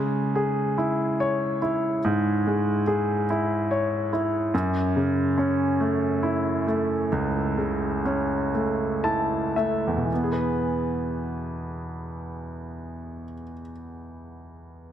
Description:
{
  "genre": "pop",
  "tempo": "36-48 BPM (dotted quarters)",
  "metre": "6/8",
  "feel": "straight",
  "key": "E major",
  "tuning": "A4 = 440 Hz",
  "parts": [
    { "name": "clear grand piano", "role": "accompaniment", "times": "0.0-14.9 s", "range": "C#2 to A5", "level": "-23 LUFS", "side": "equal", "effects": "none" }
  ],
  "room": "moderate concert hall reverb, RT60 2.1 s",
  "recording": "heavily compressed radio sound",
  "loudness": "-22 LUFS",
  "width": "side -10 dB against mid",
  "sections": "0.0-10.1 A section; 10.1-13.4 B section",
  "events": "slowing down 4.5-10.1; grand piano fill 8.5-10.1",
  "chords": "0.0 C#m; 4.5 F#m7; 10.1 E",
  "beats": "0.77 | 2.02 3.28 | 4.53 5.80 | 7.12 8.54 | 10.11 11.76"
}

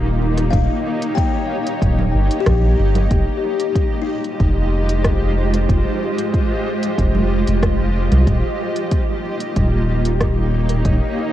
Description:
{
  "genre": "ambient dub",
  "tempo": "93 BPM",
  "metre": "4/4",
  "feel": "straight",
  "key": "unclear",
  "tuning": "A4 = 440 Hz",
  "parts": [
    { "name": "granular cloud pad", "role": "sustained chords", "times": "0.0-11.3 s", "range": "Ab3 to Eb5", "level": "-21 LUFS", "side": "equal", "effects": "built-in reverb, cassette tape, plate reverb" },
    { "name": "soft dub sub bass", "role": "bass", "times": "0.0-11.0 s", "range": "Eb1 to C2", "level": "-17 LUFS", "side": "equal", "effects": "tube saturation" },
    { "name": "organic electronic drum kit", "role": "drums", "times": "0.4-11.0 s", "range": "congas, hi-hat, rim click", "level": "-26 LUFS", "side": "right 2 dB", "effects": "overdrive, small room ambience, cassette tape, dub echo" },
    { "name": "buzzing kalimba", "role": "arpeggios", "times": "0.5-6.9 s", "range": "Eb4 to G5", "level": "-26 LUFS", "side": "left 11 dB", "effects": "vintage 12-bit sampler grit, cassette tape, analog delay, plate reverb" },
    { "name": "electronic kick drum", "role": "drums", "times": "0.5-11.0 s", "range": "none", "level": "-20 LUFS", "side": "equal", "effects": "overdrive, small room ambience, cassette tape" }
  ],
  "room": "little or no reverb",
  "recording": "home recording on cassette",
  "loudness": "-16 LUFS",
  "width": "side -12 dB against mid",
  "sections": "0.0-11.3 A section",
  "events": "none",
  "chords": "0.0 Eb7; 3.1 Fm9; 8.3 Eb7",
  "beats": "| 0.53 1.18 1.82 2.46 | 3.11 3.75 4.40 5.05 | 5.69 6.34 6.98 7.63 | 8.27 8.92 9.56 10.21 | 10.85"
}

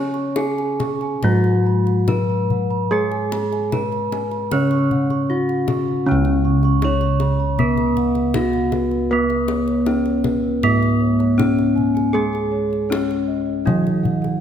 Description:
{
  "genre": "Javanese gamelan",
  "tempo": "78 BPM",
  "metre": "4/4",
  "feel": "uneven beats",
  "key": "Db slendro",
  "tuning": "A4 = 440 Hz",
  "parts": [
    { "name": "gamelan-type bronze metallophone", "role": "melody", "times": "0.0-14.4 s", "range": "Cb4-45c to Db5", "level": "-23 LUFS", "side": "left 5 dB", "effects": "none" },
    { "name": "gamelan-type bronze metallophone", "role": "accompaniment", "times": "0.0-14.4 s", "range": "Db3 to Db4", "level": "-21 LUFS", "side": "right 2 dB", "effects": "none" },
    { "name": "gamelan-type bronze metallophone", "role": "arpeggios", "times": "0.0-14.4 s", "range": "Cb5-45c to Db6", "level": "-28 LUFS", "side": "right 7 dB", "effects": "none" },
    { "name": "gamelan-type bossed gongs", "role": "bass", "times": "0.0-14.4 s", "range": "Db2 to Db5", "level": "-22 LUFS", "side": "equal", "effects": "none" },
    { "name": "kendang", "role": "percussion", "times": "0.1-14.3 s", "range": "none", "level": "-28 LUFS", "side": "left 4 dB", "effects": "none" }
  ],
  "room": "moderate scoring stage reverb, RT60 1.9 s",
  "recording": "none",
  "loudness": "-17 LUFS",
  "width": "side -9 dB against mid",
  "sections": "0.0-6.1 A section; 6.1-14.4 B section",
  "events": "none",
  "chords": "none",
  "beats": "0.37 1.24 2.08 | 2.91 3.73 4.52 5.30 | 6.07 6.83 7.59 8.35 | 9.11 9.87 10.62 11.38 | 12.14 12.90 13.66"
}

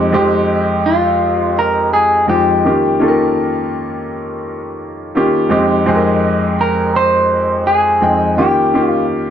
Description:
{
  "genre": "soul",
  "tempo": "84 BPM",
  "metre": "4/4",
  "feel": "swing 54% on 16ths",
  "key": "F minor",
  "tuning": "A4 = 441 Hz",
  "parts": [
    { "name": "warm concert grand piano", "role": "accompaniment", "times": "0.0-9.3 s", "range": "F2 to G5", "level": "-14 LUFS", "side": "equal", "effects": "none" },
    { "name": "clean electric guitar", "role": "melody", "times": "0.9-9.1 s", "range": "F4 to C5", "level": "-14 LUFS", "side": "equal", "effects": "none" }
  ],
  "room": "moderate echo chamber reverb, RT60 1.5 s, small room ambience",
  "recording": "none",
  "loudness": "-12 LUFS",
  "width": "side -9 dB against mid",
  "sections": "0.0-9.3 A section",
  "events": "none",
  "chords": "0.0 Fm7; 2.6 Eb7; 5.5 Fm7; 8.4 Eb7",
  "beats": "0.49 1.21 1.92 | 2.64 3.36 4.07 4.79 | 5.51 6.22 6.94 7.66 | 8.37 9.09"
}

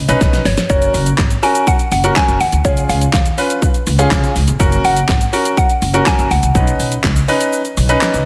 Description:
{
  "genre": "dance-pop",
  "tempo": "123 BPM",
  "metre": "4/4",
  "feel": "straight",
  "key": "F# major",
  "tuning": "A4 = 441 Hz",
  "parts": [
    { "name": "mallet-like synth pluck", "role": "melody", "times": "0.0-8.0 s", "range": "C#5 to G#5", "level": "-20 LUFS", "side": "equal", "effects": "chorus, phaser, digital delay, slapback echo" },
    { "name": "upright bass", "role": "bass", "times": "0.0-8.2 s", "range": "F#1 to C#3", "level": "-19 LUFS", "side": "equal", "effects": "sidechain pumping" },
    { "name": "bright baby grand piano", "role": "accompaniment", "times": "0.1-8.2 s", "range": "C#4 to B4", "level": "-20 LUFS", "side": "equal", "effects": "sidechain pumping, slapback echo" },
    { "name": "pop drum kit", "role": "drums", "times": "0.1-8.3 s", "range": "handclaps, hi-hat, kick drum, shaker, snare drum", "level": "-18 LUFS", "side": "equal", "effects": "none" }
  ],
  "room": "moderate lush hall reverb, RT60 1.8 s",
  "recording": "big arena sound",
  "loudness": "-14 LUFS",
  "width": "mono",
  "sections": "0.0-8.3 A section",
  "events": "drum fill 0.2-0.7; kick muted 7.5-8.3",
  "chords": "0.0 Badd9; 0.7 F#; 2.6 C#; 4.6 F#; 6.6 Badd9",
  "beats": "0.21 | 0.70 1.19 1.67 2.16 | 2.65 3.14 3.62 4.11 | 4.60 5.09 5.58 6.06 | 6.55 7.04 7.53 8.02"
}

